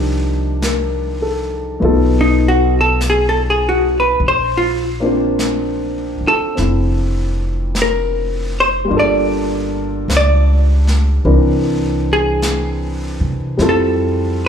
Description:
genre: jazz ballad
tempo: 51 BPM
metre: 4/4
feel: swing 69% on 8ths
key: unclear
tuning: A4 = 441 Hz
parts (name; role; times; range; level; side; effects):
- warm baby grand piano; accompaniment; 0.0-14.5 s; E3 to C5; -19 LUFS; left 1 dB; slapback echo
- upright bass; bass; 0.0-14.5 s; F1 to C3; -18 LUFS; equal; none
- vintage brush drum kit; drums; 0.6-14.5 s; brushed snare drum, hi-hat, snare drum; -28 LUFS; left 1 dB; none
- vintage hollow-body jazz guitar; melody; 2.2-14.4 s; D#4 to D5; -16 LUFS; equal; slapback echo
room: light reverb, small room ambience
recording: live gig heard through the venue's PA, club reverb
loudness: -13 LUFS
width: side -8 dB against mid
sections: 0.0-14.5 A section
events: hollow-body jazz guitar solo 0.0-14.5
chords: 0.0 Cm11; 1.8 B7#11; 4.2 Bbmaj9; 8.9 Gm9; 11.3 C7; 13.6 Fmaj9

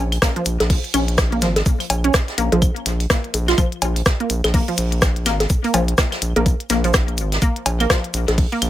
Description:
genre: minimal techno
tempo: 125 BPM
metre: 4/4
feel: swing 60% on 16ths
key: unclear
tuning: A4 = 440 Hz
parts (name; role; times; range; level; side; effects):
- round analog bass; bass; 0.0-8.7 s; Ab1 to Bb1; -21 LUFS; equal; tube saturation, sidechain pumping
- minimal click drum kit; drums; 0.1-8.7 s; hi-hat, rim click; -21 LUFS; left 1 dB; none
- vintage brush drum kit; drums; 0.1-8.7 s; hi-hat, shaker, snare drum; -27 LUFS; right 2 dB; high-pass filter on hats, high-pass filter on snare, high-pass filter on perc, high-pass filter on room
- claves, bongos and cowbell; percussion; 0.1-8.7 s; none; -23 LUFS; left 1 dB; tape echo
- resonant blip pluck; riff; 0.2-8.6 s; F3 to F4; -23 LUFS; equal; chorus, sidechain pumping, ping-pong delay
- electronic kick drum; drums; 0.2-8.5 s; none; -18 LUFS; equal; none
room: little or no reverb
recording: none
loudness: -16 LUFS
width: side -13 dB against mid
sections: 0.0-8.7 A section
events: none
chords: none

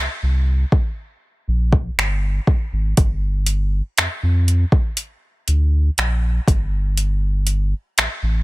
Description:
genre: contemporary R&B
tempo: 60 BPM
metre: 4/4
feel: straight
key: unclear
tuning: A4 = 440 Hz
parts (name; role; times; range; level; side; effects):
- warm sub bass; bass; 0.0-8.4 s; G1 to F2; -18 LUFS; equal; none
- smooth R&B drum kit; drums; 0.7-8.2 s; finger snaps, hi-hat, kick drum; -18 LUFS; equal; overdrive
room: little or no reverb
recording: dense, heavily limited modern master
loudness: -17 LUFS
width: side -20 dB against mid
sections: 0.0-8.4 A section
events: none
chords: none

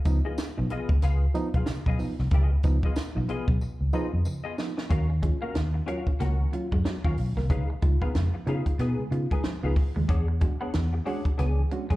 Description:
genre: funk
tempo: 93 BPM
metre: 4/4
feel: swing 60% on 16ths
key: Db mixolydian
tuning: A4 = 440 Hz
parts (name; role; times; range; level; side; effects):
- compact cocktail drum kit; drums; 0.0-12.0 s; hi-hat, kick drum, snare drum; -27 LUFS; equal; none
- semi-hollow electric guitar; accompaniment; 0.1-12.0 s; Cb4 to Ab5; -36 LUFS; left 5 dB; ensemble chorus, slapback echo
- reed electric piano; stabs; 0.1-11.9 s; Db3 to F#4; -34 LUFS; right 3 dB; slapback echo
- vintage muted fingered electric bass; bass; 0.1-12.0 s; Cb2 to Db3; -25 LUFS; equal; none
- tambourine; percussion; 0.1-4.8 s; none; -53 LUFS; left 2 dB; none
- electric guitar at the edge of break-up; riff; 5.1-12.0 s; F3 to Db4; -37 LUFS; right 3 dB; phaser, slapback echo
room: small room ambience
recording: live gig heard through the venue's PA, club reverb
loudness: -24 LUFS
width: side -18 dB against mid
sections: 0.0-4.9 A section; 4.9-12.0 B section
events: break 0.0-4.9; drum fill 3.6-4.9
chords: 0.0 Db9; 4.9 Ebm9; 7.5 Db9; 10.1 E13

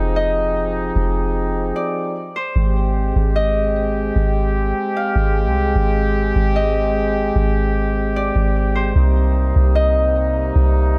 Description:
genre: hip hop, atmospheric cloud-rap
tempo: 150 BPM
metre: 4/4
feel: half-time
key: Ab lydian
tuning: A4 = 440 Hz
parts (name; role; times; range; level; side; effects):
- Celtic harp; melody; 0.0-11.0 s; C5 to F5; -26 LUFS; equal; digital delay
- mellow brass ensemble; sustained chords; 0.0-11.0 s; C3 to Ab4; -24 LUFS; equal; none
- soft 808-style bass; bass; 0.0-11.0 s; F1 to C2; -20 LUFS; equal; none
room: studio reverb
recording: none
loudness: -18 LUFS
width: mono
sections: 0.0-2.6 A section; 2.6-11.0 B section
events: break 1.8-2.6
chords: 0.0 Fm7; 2.6 Abmaj7; 9.0 Cm7

